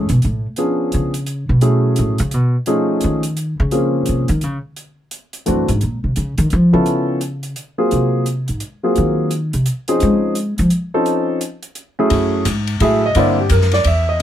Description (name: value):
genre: jazz piano trio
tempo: 172 BPM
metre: 3/4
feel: swing 64% on 8ths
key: Bb minor from 3.7 s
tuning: A4 = 440 Hz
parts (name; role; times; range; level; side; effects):
- warm grand piano; melody; 0.0-14.2 s; D3 to Fb5; -17 LUFS; equal; none
- upright bass; bass; 0.0-14.2 s; E2 to Ab3; -17 LUFS; equal; none
- open jazz drum kit; drums; 0.1-14.2 s; hi-hat, kick drum, ride cymbal, snare drum; -27 LUFS; left 1 dB; none
room: little or no reverb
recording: close, detailed microphones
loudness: -15 LUFS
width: side -11 dB against mid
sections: 0.0-3.7 A section; 3.7-12.1 A section; 12.1-14.2 A section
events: upright bass solo 0.0-12.1; grand piano solo 12.1-14.2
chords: 0.0 Amaj7(no3); 0.6 C#7b9; 1.6 F#m9; 2.7 F7alt; 3.7 Bbm9; 4.8 N.C.; 5.8 Dbmaj9; 6.9 Db7alt; 7.9 Gbmaj9#11; 9.0 Ab13; 10.0 Dbmaj9; 11.1 F7b13; 11.8 Gbm9; 13.2 C9 (rootless)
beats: 0.23 | 0.58 0.93 1.27 | 1.62 1.97 2.32 | 2.67 3.02 3.37 | 3.72 4.07 4.42 | 4.77 5.12 5.47 | 5.82 6.17 6.51 | 6.87 7.21 7.56 | 7.91 8.26 8.61 | 8.96 9.31 9.66 | 10.01 10.36 10.71 | 11.06 11.41 11.76 | 12.11 12.46 12.81 | 13.16 13.52 13.87 | 14.21